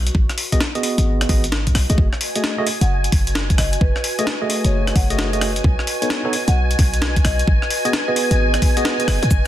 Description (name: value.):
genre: UK garage, two-step garage.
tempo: 131 BPM.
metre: 4/4.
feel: swing 64% on 16ths.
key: unclear.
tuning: A4 = 440 Hz.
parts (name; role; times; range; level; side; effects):
short 808-style bass; bass; 0.0-9.4 s; F#1 to G#2; -19 LUFS; equal; tube saturation.
warbly tape-like pad; texture; 0.0-9.5 s; F#4 to D#5; -29 LUFS; right 1 dB; chorus, built-in reverb, sidechain pumping.
breakbeat sampler-style drum kit; drums; 0.1-9.4 s; hi-hat, rim click, shaker, snare drum; -23 LUFS; left 1 dB; studio reverb.
electronic kick drum; drums; 0.1-9.4 s; none; -18 LUFS; equal; overdrive, studio reverb.
tine electric piano; stabs; 0.5-9.2 s; A3 to D#5; -24 LUFS; right 1 dB; overdrive, auto-pan, digital delay.
soft string machine; sustained chords; 2.2-9.5 s; G#5; -27 LUFS; equal; ensemble chorus, sidechain pumping.
marimba with soft mallets; melody; 2.8-9.2 s; B4 to F#5; -28 LUFS; right 1 dB; digital delay.
room: light reverb, digital ambience.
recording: dense, heavily limited modern master.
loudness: -16 LUFS.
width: side -12 dB against mid.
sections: 0.0-9.5 A section.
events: none.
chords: 0.1 G#m7; 2.0 F#m69; 5.6 B9; 7.5 G#m7.